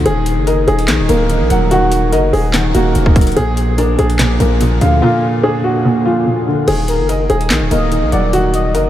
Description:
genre	hip hop, trap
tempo	145 BPM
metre	4/4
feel	half-time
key	Eb harmonic minor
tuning	A4 = 440 Hz
part	dark baby grand piano	accompaniment	0.0-8.9 s	Bb2 to Eb5	-16 LUFS	right 1 dB	lush chorus
part	distorted 808-style bass	bass	0.0-8.9 s	D1 to D2	-16 LUFS	equal	distortion
part	dark baby grand piano	melody	0.1-8.9 s	F4 to Gb5	-16 LUFS	left 1 dB	analog delay
part	trap drum kit	drums	0.1-8.8 s	crash cymbal, handclaps, hi-hat, kick drum, snare drum	-20 LUFS	equal	overdrive
part	warm velvety synth lead	second line	6.9-8.7 s	Bb4 to Eb5	-21 LUFS	left 3 dB	chorus, analog delay
room	moderate huge ambient reverb, RT60 7.9 s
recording	dreamy mix soaked in reverb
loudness	-11 LUFS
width	side -12 dB against mid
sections	0.0-6.7 A section; 6.7-8.9 B section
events	none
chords	0.1 Ebm; 3.4 Bb; 6.7 Ebm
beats	| 0.06 0.47 0.88 1.30 | 1.71 2.12 2.54 2.95 | 3.37 3.78 4.19 4.61 | 5.02 5.43 5.85 6.26 | 6.68 7.09 7.50 7.92 | 8.33 8.74

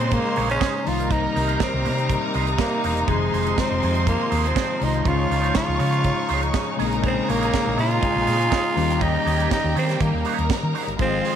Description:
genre	disco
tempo	121 BPM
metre	4/4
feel	straight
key	unclear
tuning	A4 = 440 Hz
part	growling tenor saxophone	melody	0.0-11.4 s	Ab3 to F4	-24 LUFS	right 2 dB	none
part	clear studio violin section	second line	0.0-11.4 s	F4 to Db6	-30 LUFS	equal	slapback echo
part	electric guitar with an envelope filter	accompaniment	0.0-11.4 s	Eb4 to Db5	-32 LUFS	right 11 dB	wah
part	mellow tine electric piano	accompaniment	0.0-11.4 s	C3 to C5	-29 LUFS	left 13 dB	medium stereo tremolo
part	rich studio string section	sustained chords	0.0-11.4 s	C3 to C6	-28 LUFS	left 2 dB	none
part	hollow-body short-scale fingered electric bass	bass	0.0-11.2 s	E1 to Eb3	-24 LUFS	equal	none
part	tight funk drum kit	drums	0.0-11.4 s	hi-hat, kick drum, snare drum	-27 LUFS	right 3 dB	none
room	light reverb, small room ambience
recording	1960s-style stereo with parts hard left and right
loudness	-19 LUFS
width	side -9 dB against mid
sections	0.0-11.0 A section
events	none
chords	0.0 Bbm11; 0.9 Cm7; 3.1 Fm7; 5.1 Dbmaj9; 6.8 Bbm11; 8.8 Eb7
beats	0.11 0.61 | 1.10 1.60 2.09 2.58 | 3.08 3.57 4.07 4.56 | 5.06 5.55 6.04 6.54 | 7.03 7.53 8.02 8.52 | 9.01 9.51 10.00 10.50 | 10.99

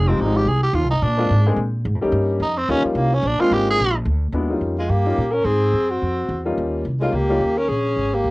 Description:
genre	jazz, small-group swing and bop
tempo	216 BPM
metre	4/4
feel	swing 59% on 8ths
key	Eb mixolydian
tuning	A4 = 440 Hz
part	growling tenor saxophone	second line	0.0-8.3 s	F3 to Ab4	-22 LUFS	right 1 dB	cassette tape
part	upright bass	bass	0.0-8.3 s	F1 to Bb2	-21 LUFS	equal	none
part	warm grand piano	accompaniment	0.1-7.4 s	F3 to Ab4	-22 LUFS	left 2 dB	cassette tape
part	breathy alto saxophone	melody	4.8-8.3 s	F4 to Bb4	-22 LUFS	left 1 dB	none
room	moderate booth ambience, RT60 0.2 s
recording	home recording on cassette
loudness	-17 LUFS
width	side -21 dB against mid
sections	0.0-4.4 A section; 4.4-8.3 B section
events	tenor saxophone solo 0.0-4.4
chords	0.0 Fm7; 1.0 Bb7; 2.1 Eb7; 3.2 Bb7; 4.4 Eb7; 5.5 Ab7; 6.6 Eb7; 7.7 Bbm7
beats	0.19 0.47 0.75 | 1.02 1.30 1.58 1.86 | 2.13 2.41 2.69 2.96 | 3.24 3.52 3.80 4.07 | 4.35 4.63 4.91 5.18 | 5.46 5.74 6.02 6.29 | 6.57 6.85 7.13 7.40 | 7.68 7.96 8.24

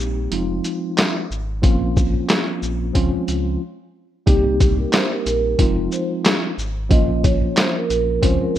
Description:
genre	hip hop, boom-bap hip-hop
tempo	91 BPM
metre	4/4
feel	swing 57% on 16ths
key	F minor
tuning	A4 = 441 Hz
part	mellow tine electric piano	accompaniment	0.0-8.6 s	F3 to G4	-22 LUFS	equal	medium stereo tremolo, cassette tape, high-pass filter, low-pass filter
part	sub bass with octave	bass	0.0-8.6 s	F1 to Db2	-24 LUFS	equal	none
part	trip hop sampler-style drum kit	drums	0.3-8.6 s	handclaps, hi-hat, kick drum, shaker, snare drum	-18 LUFS	equal	none
part	vibraphone with soft mallets	melody	4.3-8.6 s	G4 to Eb5	-23 LUFS	right 3 dB	high-pass filter, low-pass filter, analog delay
room	light reverb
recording	rough home demo mix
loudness	-17 LUFS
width	side -12 dB against mid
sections	0.0-4.3 A section; 4.3-8.6 B section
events	break 3.6-4.3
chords	0.3 Fm7; 1.6 Bbmadd9; 3.0 Dbmaj7; 4.3 Cm7; 5.6 Fm7; 6.9 Bbm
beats	0.31 0.97 | 1.63 2.29 2.95 3.61 | 4.27 4.93 5.59 6.25 | 6.91 7.57 8.23

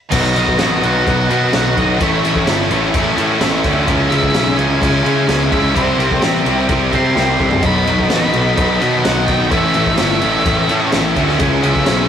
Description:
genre	quiet-loud alternative rock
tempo	128 BPM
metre	4/4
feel	straight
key	unclear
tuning	A4 = 439 Hz
part	tonewheel organ	sustained chords	0.1-12.1 s	B3 to F#5	-23 LUFS	equal	slow rotary speaker, overdrive
part	heavy high-gain guitar	riff	0.1-12.1 s	A2 to C#4	-24 LUFS	equal	none
part	high-gain distorted guitar	riff	0.1-12.1 s	A2 to C#4	-20 LUFS	left 6 dB	distortion
part	scooped high-gain guitar	riff	0.1-12.1 s	A2 to F#4	-20 LUFS	right 5 dB	distortion
part	fuzz picked electric bass	bass	0.1-12.1 s	G1 to C#3	-18 LUFS	equal	overdrive
part	raw garage drum kit	drums	0.1-12.0 s	crash cymbal, kick drum, snare drum, toms	-20 LUFS	equal	none
part	octave-fuzz lead guitar	melody	0.4-12.1 s	C5 to C6	-21 LUFS	right 1 dB	distortion
room	light reverb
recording	rough rehearsal-room recording, warm saturation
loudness	-12 LUFS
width	side -8 dB against mid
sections	0.1-12.1 A section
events	drum fill 7.2-7.6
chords	0.1 B; 2.0 A; 3.9 C#m; 5.7 C; 7.6 B; 9.5 A; 11.4 C#m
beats	| 0.11 0.58 1.05 1.52 | 1.99 2.46 2.93 3.40 | 3.87 4.34 4.81 5.28 | 5.75 6.22 6.69 7.16 | 7.62 8.10 8.56 9.04 | 9.51 9.98 10.45 10.92 | 11.39 11.86

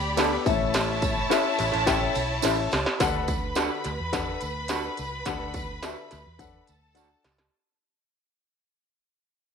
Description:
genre	uptempo 1960s-style soul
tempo	106 BPM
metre	4/4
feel	straight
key	D major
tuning	A4 = 440 Hz
part	clear studio violin section	second line	0.0-7.5 s	E4 to B5	-30 LUFS	equal	none
part	vintage muted fingered electric bass	bass	0.0-7.5 s	A1 to E2	-34 LUFS	right 1 dB	none
part	warm upright piano	accompaniment	0.2-7.3 s	A2 to G5	-29 LUFS	left 11 dB	none
part	electric guitar through a small old amp	stabs	0.2-7.1 s	B3 to A4	-32 LUFS	right 13 dB	analog chorus
part	industrial drum kit	drums	0.2-7.5 s	hi-hat, kick drum, ride cymbal, snare drum	-28 LUFS	right 2 dB	none
part	tambourine	percussion	0.2-7.4 s	none	-38 LUFS	right 15 dB	none
room	light reverb, digital ambience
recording	1960s-style stereo with parts hard left and right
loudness	-23 LUFS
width	side -6 dB against mid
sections	0.0-3.0 A section; 3.0-7.5 B section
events	drum fill 2.4-3.0, 6.4-7.5; fade-out 3.0-7.5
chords	0.5 A; 3.0 D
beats	0.18 | 0.75 1.31 1.88 2.44 | 3.00 3.57 4.13 4.70 | 5.26 5.83 6.39 6.96

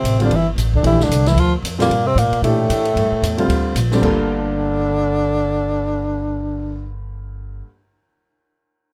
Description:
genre	modal jazz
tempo	226 BPM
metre	4/4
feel	swing 58% on 8ths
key	G dorian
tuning	A4 = 440 Hz
part	breathy tenor saxophone	melody	0.0-6.9 s	A3 to F4	-22 LUFS	equal	none
part	warm bass clarinet	second line	0.0-6.9 s	A2 to F3	-26 LUFS	equal	none
part	upright bass	bass	0.0-7.6 s	G1 to Bb2	-23 LUFS	equal	none
part	open jazz drum kit	drums	0.0-4.1 s	crash cymbal, hi-hat, kick drum, ride cymbal, snare drum	-29 LUFS	equal	none
part	warm upright piano	accompaniment	0.2-7.7 s	G2 to A4	-24 LUFS	equal	none
room	little or no reverb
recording	close, detailed microphones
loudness	-18 LUFS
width	mono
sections	0.0-4.0 A section; 4.0-6.1 B section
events	none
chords	0.0 Gm9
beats	0.04 0.30 0.57 | 0.84 1.10 1.37 1.63 | 1.90 2.17 2.43 2.70 | 2.96 3.23 3.49 3.76 | 4.02 4.29 4.55 4.82 | 5.09 5.35 5.62 5.88

